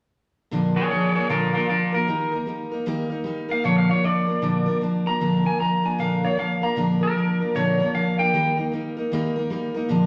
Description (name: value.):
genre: rock.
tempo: 154 BPM.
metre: 4/4.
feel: swing 62% on 8ths.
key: Bb major.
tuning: A4 = 444 Hz.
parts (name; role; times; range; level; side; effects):
picked steel-string acoustic guitar; accompaniment; 0.5-10.1 s; Bb2 to Bb4; -24 LUFS; equal; none.
electric guitar through a small old amp; melody; 0.8-8.6 s; F4 to Bb5; -26 LUFS; equal; none.
room: wet large studio reverb, RT60 1.5 s.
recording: none.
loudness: -23 LUFS.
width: mono.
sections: 0.5-6.8 A section; 6.8-10.1 B section.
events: none.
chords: 0.5 Bb; 2.1 Eb; 3.6 Bb; 8.3 Eb.